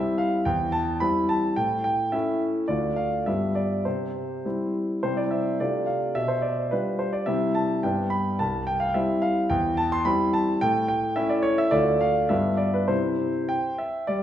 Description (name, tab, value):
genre	classical-period piano sonatina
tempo	107 BPM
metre	2/4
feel	straight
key	C major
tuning	A4 = 440 Hz
part	warm concert grand piano	solo	0.0-14.2 s	C2 to C6	-22 LUFS	equal	none
room	wet recital hall reverb, RT60 1.8 s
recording	recorded in a church or concert hall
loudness	-22 LUFS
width	side -11 dB against mid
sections	0.0-5.0 A section; 5.0-14.1 A section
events	none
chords	0.5 C/E; 1.6 A; 2.7 Dm; 3.3 G7; 3.9 C; 5.6 Dm7/C; 6.2 G7/B; 7.3 C; 7.8 G; 8.4 C; 9.5 C/E; 10.6 A; 11.7 Dm; 12.3 G7; 12.9 C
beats	| 0.47 1.02 | 1.58 2.14 | 2.70 3.27 | 3.86 4.45 | 5.03 5.60 | 6.16 6.72 | 7.28 7.84 | 8.39 8.95 | 9.50 10.06 | 10.62 11.17 | 11.73 12.31 | 12.91 13.51 | 14.10